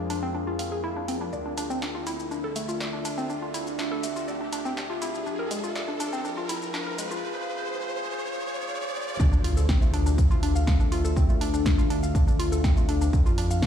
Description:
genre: melodic techno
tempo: 122 BPM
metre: 4/4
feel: straight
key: D minor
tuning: A4 = 439 Hz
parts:
  - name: deep dark ambient pad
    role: sustained chords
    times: 0.0-13.7 s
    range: D4 to F5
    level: -33 LUFS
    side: left 1 dB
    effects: chorus, built-in reverb, sidechain pumping
  - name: fat analog bass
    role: bass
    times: 0.0-13.7 s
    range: D2 to F2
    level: -30 LUFS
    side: equal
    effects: tube saturation, sidechain pumping
  - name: riser and impact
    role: sound effects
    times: 0.0-11.2 s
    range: none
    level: -34 LUFS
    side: equal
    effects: none
  - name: woody wave-folded pluck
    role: arpeggios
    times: 0.1-13.7 s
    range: Ab3 to F5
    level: -31 LUFS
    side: left 1 dB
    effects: chorus, sidechain pumping, digital delay
  - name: techno drum kit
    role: drums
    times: 0.1-13.7 s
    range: hi-hat, shaker, snare drum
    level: -35 LUFS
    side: equal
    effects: high-pass filter on hats, high-pass filter on perc, high-pass filter on snare, high-pass filter on room
  - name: electronic kick drum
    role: drums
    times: 9.2-13.7 s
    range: none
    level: -22 LUFS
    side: equal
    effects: none
room: digital ambience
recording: played on a big sound system in a bare room, stone room reverb, high-pass filter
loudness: -24 LUFS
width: side -9 dB against mid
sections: 0.0-9.2 A section; 9.2-13.7 B section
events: build-up 0.0-9.2; riser 0.0-9.2; filter sweep 0.0-9.2; drop 9.2-13.7; impact 9.2-11.2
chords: 0.0 Fm; 1.3 Dm; 5.3 Fm; 9.2 Dm; 13.1 Fm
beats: 0.35 0.84 | 1.33 1.82 2.31 2.81 | 3.30 3.79 4.28 4.77 | 5.26 5.76 6.25 6.74 | 7.23 7.72 8.21 8.71 | 9.20 9.69 10.18 10.67 | 11.16 11.66 12.15 12.64 | 13.13 13.62

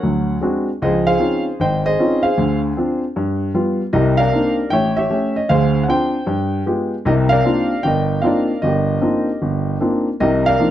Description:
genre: solo jazz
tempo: 153 BPM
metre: 4/4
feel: swing 64% on 8ths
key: C minor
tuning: A4 = 437 Hz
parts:
  - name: warm upright piano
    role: solo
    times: 0.0-10.7 s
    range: G1 to G5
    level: -15 LUFS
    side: equal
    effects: none
room: light reverb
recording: dark, warm production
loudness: -15 LUFS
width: side -12 dB against mid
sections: 0.0-10.2 A section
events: none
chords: 0.0 D7#11; 0.8 Dbmaj9; 2.4 Dm7b5; 3.2 G7; 3.9 Cm9; 4.7 A7; 5.5 Dm7b5; 6.3 G7b9; 7.1 Cm11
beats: 0.02 0.41 | 0.80 1.20 1.59 1.98 | 2.37 2.76 3.15 3.54 | 3.93 4.33 4.72 5.11 | 5.50 5.89 6.28 6.67 | 7.06 7.46 7.85 8.24 | 8.63 9.02 9.41 9.80 | 10.19 10.58

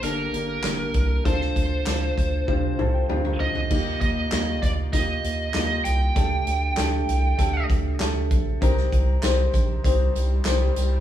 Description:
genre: piano-driven pop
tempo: 98 BPM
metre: 4/4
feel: straight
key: unclear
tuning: A4 = 440 Hz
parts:
  - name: biting lead guitar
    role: melody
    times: 0.0-7.6 s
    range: Bb4 to G5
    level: -28 LUFS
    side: right 3 dB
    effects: overdrive, digital delay
  - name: clear upright piano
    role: accompaniment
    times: 0.0-11.0 s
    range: G2 to Bb5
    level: -28 LUFS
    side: left 3 dB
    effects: none
  - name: round analog bass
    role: bass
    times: 0.0-11.0 s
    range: G1 to Eb2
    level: -24 LUFS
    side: right 1 dB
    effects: none
  - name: natural country drum kit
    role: drums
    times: 0.0-10.9 s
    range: crash cymbal, handclaps, hi-hat, kick drum, snare drum, toms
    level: -26 LUFS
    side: equal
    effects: none
  - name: tambourine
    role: percussion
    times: 8.6-10.9 s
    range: none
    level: -40 LUFS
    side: right 4 dB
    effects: none
  - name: swell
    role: sound effects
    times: 9.7-11.0 s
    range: none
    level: -36 LUFS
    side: left 5 dB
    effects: none
room: light reverb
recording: band playing live in one room, studio reverb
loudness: -20 LUFS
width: side -11 dB against mid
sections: 0.0-3.7 A section; 3.7-11.0 B section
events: drum fill 2.5-3.7; upright piano fill 2.5-3.7; swell 9.7-11.0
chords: 0.0 Gm; 1.3 Dm7; 3.7 Ebadd9; 6.2 Dsus4; 8.6 Cm7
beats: 0.03 0.64 | 1.25 1.87 2.48 3.09 | 3.71 4.32 4.93 5.55 | 6.16 6.77 7.39 8.00 | 8.61 9.23 9.84 10.45

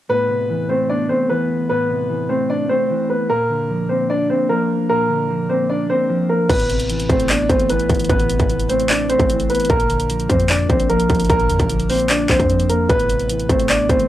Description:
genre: hip hop, trap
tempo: 150 BPM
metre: 4/4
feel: half-time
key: A minor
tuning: A4 = 437 Hz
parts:
  - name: warm concert grand piano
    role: melody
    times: 0.1-14.1 s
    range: Bb3 to D5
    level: -18 LUFS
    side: equal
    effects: cassette tape
  - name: mellow electric guitar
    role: accompaniment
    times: 0.1-14.1 s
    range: A2 to D4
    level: -22 LUFS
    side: left 1 dB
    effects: lush chorus, cassette tape
  - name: clean 808-style bass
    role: bass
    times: 6.5-14.1 s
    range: G1 to F2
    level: -23 LUFS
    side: equal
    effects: none
  - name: dubstep drum kit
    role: drums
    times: 6.5-14.1 s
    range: crash cymbal, handclaps, hi-hat, kick drum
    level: -19 LUFS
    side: equal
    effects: distortion, cassette tape
room: light reverb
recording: home recording on cassette, lossy compression artefacts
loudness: -15 LUFS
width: side -13 dB against mid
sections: 0.1-6.5 A section; 6.5-14.1 B section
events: none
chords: 0.1 Amadd9; 3.3 Bb; 6.5 Amadd9; 9.7 Bb; 12.9 Amadd9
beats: | 0.10 0.49 0.90 1.29 | 1.70 2.10 2.50 2.90 | 3.29 3.69 4.09 4.50 | 4.89 5.29 5.70 6.09 | 6.50 6.89 7.29 7.70 | 8.10 8.49 8.89 9.29 | 9.70 10.10 10.49 10.89 | 11.29 11.70 12.10 12.49 | 12.89 13.29 13.70

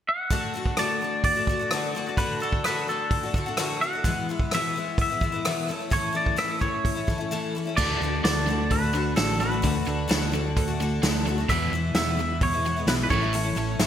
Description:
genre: folk rock and heartland rock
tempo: 129 BPM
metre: 4/4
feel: straight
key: D lydian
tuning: A4 = 440 Hz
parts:
  - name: twangy electric guitar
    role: melody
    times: 0.1-13.9 s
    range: A4 to F#5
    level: -28 LUFS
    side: right 1 dB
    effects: lush chorus
  - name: picked twelve-string acoustic guitar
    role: accompaniment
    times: 0.3-13.9 s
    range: E2 to F#4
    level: -29 LUFS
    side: left 4 dB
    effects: lush chorus
  - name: vintage drum kit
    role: drums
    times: 0.3-13.9 s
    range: crash cymbal, hi-hat, kick drum, rim click, snare drum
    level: -27 LUFS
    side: right 1 dB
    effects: gated reverb
  - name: overdriven electric guitar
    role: riff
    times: 7.8-13.9 s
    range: E2 to D4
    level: -30 LUFS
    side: right 2 dB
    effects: none
  - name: hollow-body short-scale fingered electric bass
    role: bass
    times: 7.8-13.9 s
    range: A1 to E2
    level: -28 LUFS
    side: right 1 dB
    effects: none
room: moderate lush hall reverb, RT60 1.7 s, studio ambience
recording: bright 1980s-style digital production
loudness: -23 LUFS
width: side -10 dB against mid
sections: 0.3-7.8 A section; 7.8-13.9 B section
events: none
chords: 0.3 D; 4.0 E; 5.7 A; 7.8 D; 11.5 E; 13.1 A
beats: | 0.30 0.77 1.24 1.71 | 2.18 2.65 3.11 3.58 | 4.05 4.52 4.98 5.45 | 5.92 6.39 6.85 7.32 | 7.79 8.25 8.71 9.18 | 9.64 10.11 10.57 11.03 | 11.49 11.96 12.42 12.88 | 13.34 13.80

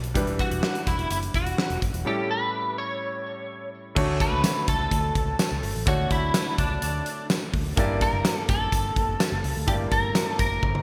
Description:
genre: 1980s-style pop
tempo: 126 BPM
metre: 4/4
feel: straight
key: D major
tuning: A4 = 440 Hz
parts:
  - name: clear concert grand piano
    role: accompaniment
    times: 0.0-10.8 s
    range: G2 to D5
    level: -33 LUFS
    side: equal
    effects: subtle chorus
  - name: vintage muted fingered electric bass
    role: bass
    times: 0.0-10.8 s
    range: E1 to D2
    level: -32 LUFS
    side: equal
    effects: none
  - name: big rock drum kit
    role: drums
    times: 0.0-10.8 s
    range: crash cymbal, hi-hat, kick drum, snare drum, tambourine, toms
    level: -28 LUFS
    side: equal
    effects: gated reverb
  - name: electric guitar at the edge of break-up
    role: melody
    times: 0.4-10.8 s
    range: D4 to C#5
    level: -30 LUFS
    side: equal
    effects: ensemble chorus, delay
room: moderate plate reverb, RT60 1.9 s, small room ambience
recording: bright 1980s-style digital production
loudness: -25 LUFS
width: mono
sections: 0.0-4.0 A section; 4.0-10.8 B section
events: break 2.1-4.0; drum fill 10.6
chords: 0.2 Em7; 2.1 A7; 4.0 Dmaj7; 7.8 Gm6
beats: | 0.15 0.63 1.11 1.58 | 2.06 2.54 3.01 3.49 | 3.96 4.44 4.92 5.39 | 5.87 6.34 6.82 7.30 | 7.77 8.25 8.73 9.20 | 9.68 10.15 10.63

